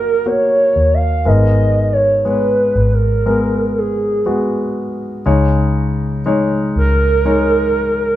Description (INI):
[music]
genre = pop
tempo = 60 BPM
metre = 4/4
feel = straight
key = unclear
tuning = A4 = 440 Hz
[part]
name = hollow clarinet-like synth lead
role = melody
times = 0.0-8.2 s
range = G#4 to E#5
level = -15 LUFS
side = right 2 dB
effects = chorus
[part]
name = warm grand piano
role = accompaniment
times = 0.0-8.2 s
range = G#2 to D#5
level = -17 LUFS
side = left 2 dB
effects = none
[part]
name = vintage muted fingered electric bass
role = bass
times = 0.0-8.2 s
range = F#1 to D#2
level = -17 LUFS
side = equal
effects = none
[sound]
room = moderate large studio reverb, RT60 1.3 s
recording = band playing live in one room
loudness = -13 LUFS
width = side -13 dB against mid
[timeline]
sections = 0.0-8.2 A section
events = none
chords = 0.0 F#; 1.3 G#madd9; 5.3 C#sus2